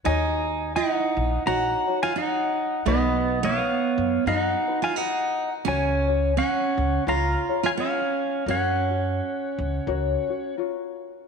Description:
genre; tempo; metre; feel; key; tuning
Hawaiian; 86 BPM; 4/4; swing 60% on 8ths; F# major; A4 = 441 Hz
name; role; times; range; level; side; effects
tenor ukulele; accompaniment; 0.0-11.3 s; C#4 to C#5; -31 LUFS; left 11 dB; none
pedal steel guitar; melody; 0.1-10.6 s; B4 to A#5; -26 LUFS; left 2 dB; none
fingerpicked steel-string acoustic guitar; second line; 0.1-10.5 s; B3 to F#4; -27 LUFS; right 9 dB; none
upright bass; bass; 0.1-10.1 s; A#1 to F#2; -27 LUFS; equal; none
room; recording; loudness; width
wet echo chamber reverb, RT60 2.0 s, small room ambience; 1960s-style stereo with parts hard left and right; -22 LUFS; side -5 dB against mid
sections
0.1-11.3 A section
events
none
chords
0.1 D#m7; 2.9 Bmaj7; 5.7 F#/C#; 7.1 C#7; 8.5 F#maj7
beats
| 0.06 0.76 1.46 2.16 | 2.86 3.56 4.26 4.96 | 5.67 6.37 7.07 7.77 | 8.47 9.17 9.87 10.57 | 11.27

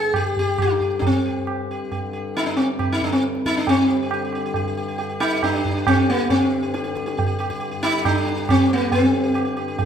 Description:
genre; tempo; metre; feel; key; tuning
indian classical, Hindustani; 137 BPM; 3/4; straight; G raga bhairavi; A4 = 441 Hz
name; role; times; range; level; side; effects
sitar; melody; 0.0-9.9 s; Bb3 to Ab4; -20 LUFS; left 1 dB; none
hand-pumped harmonium; drone; 0.0-9.9 s; G2 to D3; -30 LUFS; left 4 dB; none
tabla; percussion; 0.1-9.9 s; none; -24 LUFS; right 4 dB; none
room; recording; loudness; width
light reverb; minimal, uncompressed stereo recording; -18 LUFS; side -8 dB against mid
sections
0.0-3.7 A section; 3.7-9.9 B section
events
none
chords
none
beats
0.13 0.58 | 1.02 1.47 1.91 | 2.35 2.79 3.23 | 3.67 4.11 4.55 | 4.99 5.43 5.87 | 6.31 6.75 7.18 | 7.62 8.05 8.49 | 8.93 9.36 9.79

